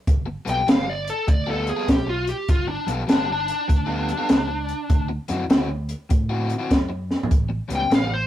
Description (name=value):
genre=electric blues shuffle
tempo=99 BPM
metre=4/4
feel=swing 65% on 8ths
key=unclear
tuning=A4 = 440 Hz
part: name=fingered electric bass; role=bass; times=0.1-8.3 s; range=G1 to A2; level=-29 LUFS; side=right 1 dB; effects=none
part: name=compact cocktail drum kit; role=drums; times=0.1-8.1 s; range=hi-hat, kick drum, snare drum, toms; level=-19 LUFS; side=equal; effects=none
part: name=crunchy overdriven guitar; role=riff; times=0.3-8.1 s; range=A2 to A4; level=-29 LUFS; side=left 3 dB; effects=none
part: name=smooth overdriven lead guitar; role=melody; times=0.5-8.3 s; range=D4 to G5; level=-25 LUFS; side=left 1 dB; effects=none
room=light reverb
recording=rough rehearsal-room recording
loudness=-20 LUFS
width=side -12 dB against mid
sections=0.0-8.3 A section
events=drum fill 7.0-7.3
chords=0.0 G9; 4.9 D9; 7.3 A9